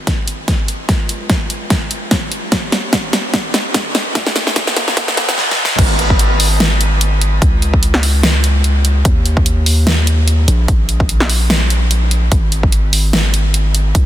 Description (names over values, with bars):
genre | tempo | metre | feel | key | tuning
future bass | 147 BPM | 4/4 | swing 55% on 16ths, half-time | unclear | A4 = 440 Hz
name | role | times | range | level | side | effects
long sustained 808-style bass | bass | 0.0-14.1 s | Ab1 to Eb2 | -14 LUFS | equal | sidechain pumping, high-pass filter
big-room dance drum kit | drums | 0.1-14.0 s | crash cymbal, hi-hat, snare drum | -16 LUFS | equal | none
electronic kick drum | drums | 0.1-14.0 s | none | -15 LUFS | equal | none
room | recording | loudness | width
light reverb, digital ambience | dense, heavily limited modern master, high-pass filter | -12 LUFS | side -12 dB against mid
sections
0.0-5.8 A section; 5.8-14.1 B section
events
build-up 0.0-5.8; drum fill 0.0-5.4, 5.4-5.8; filter sweep 0.0-5.8; drop 5.8-14.1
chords
none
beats
0.07 0.48 | 0.89 1.30 1.71 2.11 | 2.52 2.93 3.34 3.75 | 4.15 4.56 4.97 5.38 | 5.79 6.19 6.60 7.01 | 7.42 7.83 8.23 8.64 | 9.05 9.46 9.87 10.28 | 10.68 11.09 11.50 11.91 | 12.32 12.72 13.13 13.54 | 13.95